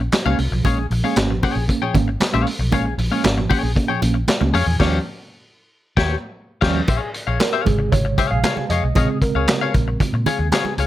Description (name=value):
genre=funk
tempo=115 BPM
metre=4/4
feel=straight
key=Bb dorian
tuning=A4 = 439 Hz
part: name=clean electric guitar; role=accompaniment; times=0.0-10.9 s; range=G4 to G5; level=-24 LUFS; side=left 8 dB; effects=lush chorus
part: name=vintage muted fingered electric bass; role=bass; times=0.0-10.9 s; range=Ab1 to Bb2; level=-21 LUFS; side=equal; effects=none
part: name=vintage drum kit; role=drums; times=0.1-10.9 s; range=crash cymbal, handclaps, hi-hat, kick drum, snare drum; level=-21 LUFS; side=equal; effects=none
part: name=congas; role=percussion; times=0.1-10.8 s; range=none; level=-25 LUFS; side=right 6 dB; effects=none
part: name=mellow tine electric piano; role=stabs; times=0.3-10.9 s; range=Bb2 to F5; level=-23 LUFS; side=right 3 dB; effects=medium stereo tremolo
room=light reverb, small room ambience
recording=none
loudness=-17 LUFS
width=side -14 dB against mid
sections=0.0-6.9 A section; 6.9-10.9 B section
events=band accent 4.8-6.9; tine electric piano solo 6.9-10.9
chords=0.0 Bbm7; 4.8 Eb9; 6.9 Bbm7